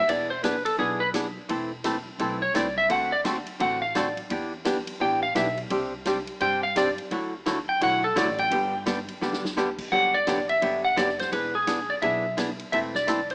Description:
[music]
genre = country, western swing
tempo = 171 BPM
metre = 4/4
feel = swing 63% on 8ths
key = G major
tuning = A4 = 439 Hz
[part]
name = clean lap steel guitar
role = melody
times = 0.0-13.3 s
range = G#4 to G5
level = -27 LUFS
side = equal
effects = none
[part]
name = upright bass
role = bass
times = 0.0-13.3 s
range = E1 to G2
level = -42 LUFS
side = equal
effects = none
[part]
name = archtop guitar, miked and amplified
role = accompaniment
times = 0.1-13.2 s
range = C3 to A4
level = -30 LUFS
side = equal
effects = none
[part]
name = swinging big-band drum kit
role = drums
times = 0.1-13.3 s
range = crash cymbal, hi-hat, kick drum, ride cymbal, snare drum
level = -38 LUFS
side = equal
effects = none
[sound]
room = moderate echo chamber reverb, RT60 2.1 s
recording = small speaker sound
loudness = -26 LUFS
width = mono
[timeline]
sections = 0.0-9.9 A section; 9.9-13.3 B section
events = electric slide guitar solo 0.0-9.9; drum fill 9.2-9.6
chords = 0.1 E7; 1.5 Am/E; 2.9 D7; 4.3 Em7; 5.7 Csus2; 7.1 Dadd9; 8.5 G; 9.9 Gmaj7; 11.3 E7; 12.7 Am/E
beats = | 0.09 0.44 0.79 1.14 | 1.49 1.84 2.20 2.55 | 2.90 3.25 3.60 3.95 | 4.30 4.66 5.01 5.36 | 5.71 6.06 6.41 6.76 | 7.11 7.46 7.81 8.16 | 8.52 8.87 9.22 9.57 | 9.92 10.27 10.62 10.97 | 11.32 11.67 12.02 12.38 | 12.73 13.08

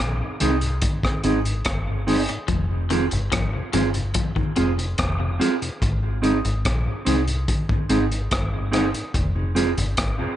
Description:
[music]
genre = dub reggae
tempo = 72 BPM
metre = 4/4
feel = straight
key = unclear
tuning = A4 = 440 Hz
[part]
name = vintage muted fingered electric bass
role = bass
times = 0.0-10.2 s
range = F1 to C2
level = -24 LUFS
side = equal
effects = none
[part]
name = crunchy breakbeat drum kit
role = drums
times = 0.0-10.2 s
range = hi-hat, kick drum, rim click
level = -25 LUFS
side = equal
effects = none
[part]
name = mellow tonewheel organ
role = accompaniment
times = 0.2-10.3 s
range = F2 to C4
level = -29 LUFS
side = left 3 dB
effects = slow rotary speaker
[part]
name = mellow electric guitar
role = accompaniment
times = 0.4-9.7 s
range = C4 to Ab4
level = -25 LUFS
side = right 3 dB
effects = dub echo
[part]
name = clean electric guitar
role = arpeggios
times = 2.5-4.7 s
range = C3 to F3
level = -32 LUFS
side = left 9 dB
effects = dub echo
[sound]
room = light reverb, small room ambience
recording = nothing above 10.3 kHz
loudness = -20 LUFS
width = side -12 dB against mid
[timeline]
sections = 0.0-10.4 A section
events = break 0.0-2.5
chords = 0.0 Ab; 2.5 Fm; 5.8 Ab; 9.1 Fm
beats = 0.82 1.65 | 2.49 3.32 4.15 4.98 | 5.81 6.65 7.48 8.31 | 9.14 9.98

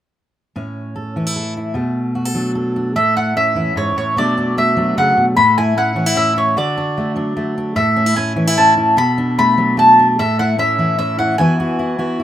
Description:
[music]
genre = indie folk with a building arrangement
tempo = 150 BPM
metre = 3/4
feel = straight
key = A major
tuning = A4 = 440 Hz
[part]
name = fingerpicked steel-string acoustic guitar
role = accompaniment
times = 0.6-12.2 s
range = G#2 to A4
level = -17 LUFS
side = equal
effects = none
[part]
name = mandolin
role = melody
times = 3.0-12.1 s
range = C#5 to B5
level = -14 LUFS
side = equal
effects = analog delay
[sound]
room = studio reverb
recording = rough home demo mix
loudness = -13 LUFS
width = side -11 dB against mid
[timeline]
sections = 0.5-3.0 A section; 3.0-12.2 B section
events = none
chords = 0.5 A; 1.8 Bm7; 3.0 A; 4.2 Bm7; 5.4 A; 6.6 D; 7.8 A; 9.0 Bm7; 10.2 A; 11.4 Eadd9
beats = | 0.55 0.95 1.35 | 1.75 2.15 2.55 | 2.96 3.35 3.76 | 4.16 4.56 4.96 | 5.36 5.76 6.16 | 6.56 6.96 7.36 | 7.76 8.17 8.57 | 8.97 9.37 9.77 | 10.18 10.58 10.98 | 11.38 11.79 12.19

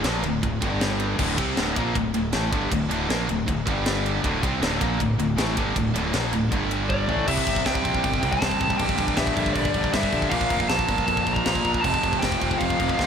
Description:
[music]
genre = heavy metal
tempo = 158 BPM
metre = 4/4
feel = straight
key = D minor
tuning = A4 = 443 Hz
[part]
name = distorted electric guitar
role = riff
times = 0.0-13.1 s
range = D2 to C4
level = -28 LUFS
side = right 9 dB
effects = overdrive
[part]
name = scooped high-gain guitar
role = riff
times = 0.0-13.1 s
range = D2 to C4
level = -30 LUFS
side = equal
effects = distortion
[part]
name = tight distorted guitar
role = riff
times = 0.0-13.1 s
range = D2 to C4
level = -28 LUFS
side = left 8 dB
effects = distortion
[part]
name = fuzz fingered electric bass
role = bass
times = 0.0-13.1 s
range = D1 to G2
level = -29 LUFS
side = equal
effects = overdrive
[part]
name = tight metal drum kit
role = drums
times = 0.0-13.1 s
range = crash cymbal, kick drum, ride cymbal, snare drum, toms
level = -27 LUFS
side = equal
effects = none
[part]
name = high-gain lead guitar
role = melody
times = 6.9-13.1 s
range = D5 to Bb5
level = -25 LUFS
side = left 1 dB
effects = distortion
[sound]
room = moderate lush hall reverb, RT60 1.9 s, small room ambience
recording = big arena sound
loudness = -21 LUFS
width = side -7 dB against mid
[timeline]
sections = 0.0-7.3 A section; 7.3-13.1 B section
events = drum fill 6.9-7.3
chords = 0.0 Dm; 0.6 G5; 1.2 Dm; 3.7 G5; 4.2 Dm; 6.5 G5; 7.1 D5; 7.3 C; 8.8 Gm/Bb; 10.3 Bb5; 11.8 F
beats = 0.04 0.42 0.80 | 1.19 1.57 1.95 2.33 | 2.71 3.09 3.47 3.85 | 4.24 4.62 5.00 5.38 | 5.76 6.14 6.52 6.90 | 7.28 7.66 8.04 8.42 | 8.80 9.18 9.56 9.94 | 10.32 10.70 11.08 11.46 | 11.84 12.22 12.60 12.99

